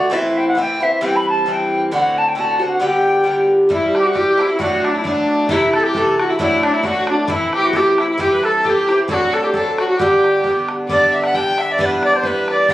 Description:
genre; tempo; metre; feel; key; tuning
celtic folk, Celtic polka; 133 BPM; 2/4; swing 54% on 8ths; G major; A4 = 440 Hz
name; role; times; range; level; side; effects
bright wooden flute; melody; 0.0-12.7 s; D4 to B5; -17 LUFS; equal; none
Irish bouzouki; accompaniment; 0.0-12.7 s; G2 to G4; -18 LUFS; equal; none
rich fiddle; second line; 3.7-12.7 s; D4 to G5; -20 LUFS; left 2 dB; none
bodhran; percussion; 3.7-12.7 s; none; -28 LUFS; equal; none
room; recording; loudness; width
moderate studio reverb, RT60 0.5 s; recorded on a phone in the room, club reverb, compression; -14 LUFS; side -14 dB against mid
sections
0.0-3.7 A section; 3.7-10.9 A section; 10.9-12.7 B section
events
none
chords
0.1 Am; 1.0 C; 1.9 D7; 2.8 G; 3.7 C; 4.6 D; 5.5 Am; 6.4 D; 7.3 Am; 8.2 C; 9.1 D7; 10.0 G; 11.8 Em7

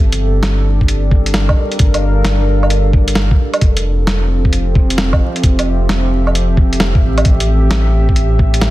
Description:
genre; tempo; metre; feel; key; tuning
future garage; 132 BPM; 4/4; swing 66% on 16ths; G dorian; A4 = 440 Hz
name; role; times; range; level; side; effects
warbly tape-like pad; sustained chords; 0.0-8.7 s; A2 to F5; -19 LUFS; equal; chorus, built-in reverb, sidechain pumping
warm sub bass; bass; 0.0-8.7 s; F1 to A1; -14 LUFS; equal; sidechain pumping
lo-fi sampler-style drum kit; drums; 0.1-8.7 s; hi-hat, snare drum, woodblock; -19 LUFS; right 1 dB; none
electronic kick drum; drums; 0.8-8.5 s; none; -12 LUFS; equal; none
room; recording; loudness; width
little or no reverb; dense, heavily limited modern master, vinyl crackle; -11 LUFS; side -16 dB against mid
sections
0.0-8.7 A section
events
none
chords
0.0 Gm7; 3.6 Fmaj7; 7.3 Am7

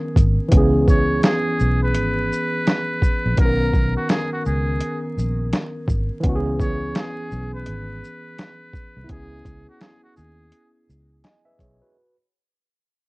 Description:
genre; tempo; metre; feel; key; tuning
lo-fi hip hop; 84 BPM; 4/4; swing 61% on 16ths; C# dorian; A4 = 440 Hz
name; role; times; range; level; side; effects
tine electric piano; accompaniment; 0.0-12.2 s; D#3 to G#5; -24 LUFS; equal; medium stereo tremolo, low-pass filter
vintage muted fingered electric bass; bass; 0.2-11.8 s; G#1 to D#2; -22 LUFS; equal; none
lo-fi sampler-style drum kit; drums; 0.2-11.8 s; hi-hat, kick drum, shaker, snare drum; -19 LUFS; equal; overdrive, vintage 12-bit sampler grit
trumpet with metal mute; melody; 0.9-10.7 s; F#4 to C#5; -28 LUFS; equal; low-pass filter
room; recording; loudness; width
light reverb; worn, warbling old tape, cassette tape, vinyl crackle, warbly pitch drift, nothing above 10.6 kHz; -18 LUFS; side -24 dB against mid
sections
0.0-12.0 A section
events
fade-out 0.0-12.0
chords
0.0 Bmaj9; 0.5 C#m7; 3.4 Bmaj9; 6.2 C#m7

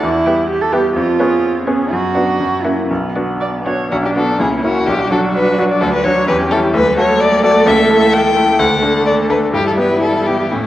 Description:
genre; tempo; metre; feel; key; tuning
quick classical-period movement for piano quintet; 117-131 BPM; 2/4; rubato; B minor; A4 = 439 Hz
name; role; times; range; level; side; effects
rich violin; melody; 0.0-10.7 s; E4 to G#5; -16 LUFS; left 2 dB; none
dark cello; second line; 0.0-10.7 s; D3 to A4; -20 LUFS; right 4 dB; none
bright grand piano; accompaniment; 0.0-10.7 s; B1 to A4; -17 LUFS; left 1 dB; none
rich viola; accompaniment; 0.0-10.7 s; G3 to D5; -22 LUFS; right 2 dB; none
dark violin; second line; 0.3-10.7 s; C#4 to E5; -20 LUFS; equal; none
room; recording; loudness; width
wet recital hall reverb, RT60 1.5 s; worn, warbling old tape, cassette tape, warbly pitch drift; -12 LUFS; side -14 dB against mid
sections
0.0-3.9 A section; 3.9-10.7 A section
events
none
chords
0.0 Em; 1.0 C#7/E#; 1.9 Bm/F#; 2.4 F#7; 2.9 Bm; 4.4 A#dim/C#; 4.9 Bm; 5.8 D; 6.3 C#dim/E; 6.7 D; 7.7 A/C#; 8.6 D; 9.5 Em/G

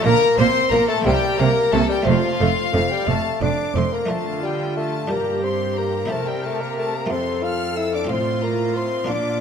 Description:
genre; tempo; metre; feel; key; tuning
classical, baroque-style concerto movement with solo episodes; 60 BPM (dotted quarters); 6/8; straight; F major; A4 = 440 Hz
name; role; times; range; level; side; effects
mellow bassoon; melody; 0.0-9.4 s; F3 to F4; -23 LUFS; left 1 dB; none
rich chamber violin section; melody; 0.0-9.4 s; D5 to C6; -28 LUFS; left 8 dB; none
clear chamber violin section; second line; 0.0-9.4 s; F4 to F6; -27 LUFS; left 3 dB; none
buff-stop harpsichord; accompaniment; 0.0-9.4 s; F2 to G4; -30 LUFS; equal; none
rich chamber viola section; accompaniment; 0.1-9.4 s; A3 to Bb4; -26 LUFS; equal; none
clear chamber cello section; bass; 0.1-9.4 s; F2 to D3; -26 LUFS; right 4 dB; none
dark chamber double bass section; bass; 0.1-3.8 s; F1 to C2; -25 LUFS; right 5 dB; none
room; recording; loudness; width
moderate concert hall reverb, RT60 2.4 s; none; -18 LUFS; side -7 dB against mid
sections
0.0-4.1 A section; 4.1-9.4 B section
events
none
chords
0.1 Bbmaj9; 1.1 C7; 2.1 F; 4.1 Dm; 5.1 G5; 6.1 C7; 7.1 F; 8.1 F/A

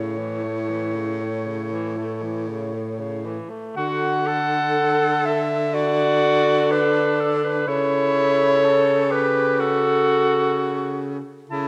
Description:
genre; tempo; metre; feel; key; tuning
classical, lyrical piece for single-reed quartet; 58-63 BPM; 4/4; rubato; D major; A4 = 444 Hz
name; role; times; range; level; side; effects
mellow clarinet; melody; 0.0-11.7 s; A4 to A5; -24 LUFS; equal; none
mellow alto saxophone; second line; 0.0-11.7 s; E4 to A4; -29 LUFS; equal; none
warm tenor saxophone; accompaniment; 0.0-11.7 s; A2 to A4; -28 LUFS; equal; none
clear baritone saxophone; bass; 0.0-11.7 s; A2 to D3; -29 LUFS; equal; none
room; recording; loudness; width
wet concert hall reverb, RT60 1.8 s; none; -21 LUFS; mono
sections
0.0-3.8 A section; 3.8-11.7 B section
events
none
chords
0.0 A; 3.8 D; 7.7 A/C#

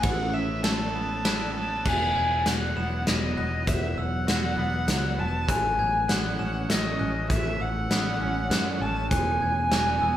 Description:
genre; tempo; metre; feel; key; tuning
post-rock; 99 BPM; 3/4; straight; A lydian; A4 = 440 Hz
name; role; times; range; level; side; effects
muted violin; melody; 0.0-10.2 s; D#5 to A5; -28 LUFS; equal; none
glassy FM pad; sustained chords; 0.0-10.2 s; D#3 to C#5; -35 LUFS; equal; ensemble chorus, built-in reverb, phaser
glockenspiel with brass mallets; arpeggios; 0.0-10.2 s; E6 to E7; -37 LUFS; left 2 dB; none
twangy electric guitar; arpeggios; 0.0-10.2 s; E2 to F#4; -36 LUFS; equal; spring reverb
picked electric bass; bass; 0.0-10.2 s; E1 to F#2; -30 LUFS; equal; none
big rock drum kit; drums; 0.0-9.9 s; crash cymbal, hi-hat, kick drum, ride cymbal, snare drum; -28 LUFS; equal; none
room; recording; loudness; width
wet large studio reverb, RT60 0.9 s; band playing live in one room; -23 LUFS; side -12 dB against mid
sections
0.0-1.9 A section; 1.9-10.2 B section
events
none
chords
0.0 Aadd9; 1.9 Esus2; 5.5 Aadd9; 9.1 Esus2

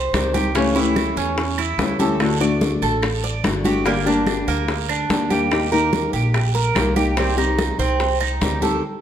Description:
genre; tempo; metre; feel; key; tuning
latin, Cuban son and guajira; 145 BPM; 4/4; straight; unclear; A4 = 440 Hz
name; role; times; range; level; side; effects
Cuban tres; arpeggios; 0.0-8.8 s; Bb3 to D5; -22 LUFS; right 4 dB; none
upright bass; bass; 0.0-8.8 s; G1 to E2; -24 LUFS; equal; none
nylon-string guitar; accompaniment; 0.1-8.8 s; C3 to G4; -22 LUFS; left 3 dB; none
bongos; percussion; 0.1-8.6 s; none; -28 LUFS; left 4 dB; none
claves; percussion; 0.1-8.4 s; none; -33 LUFS; right 7 dB; none
congas; percussion; 0.1-8.8 s; none; -28 LUFS; right 1 dB; none
guiro; percussion; 0.1-8.8 s; none; -33 LUFS; right 9 dB; none
room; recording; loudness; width
wet large studio reverb, RT60 1.3 s; none; -17 LUFS; side -9 dB against mid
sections
0.0-9.0 A section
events
band accent 8.8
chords
0.0 Cm; 0.6 A7/C#; 2.2 D; 3.9 Gm; 5.5 Eb; 7.2 Cm

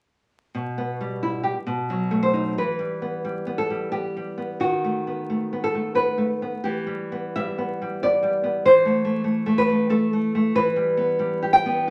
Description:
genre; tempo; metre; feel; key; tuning
romantic piece for solo classical guitar; 78-97 BPM; 3/4; rubato; E minor; A4 = 440 Hz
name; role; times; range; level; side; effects
nylon-string guitar; solo; 0.5-11.9 s; B2 to G5; -23 LUFS; equal; none
room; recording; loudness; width
moderate large studio reverb, RT60 0.8 s; vinyl crackle; -23 LUFS; mono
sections
0.5-2.6 A section; 2.6-11.9 B section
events
none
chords
0.5 Em/B; 1.5 B7; 2.6 Em; 4.6 B7/D#; 6.6 Em; 8.6 Am/E; 10.5 Em

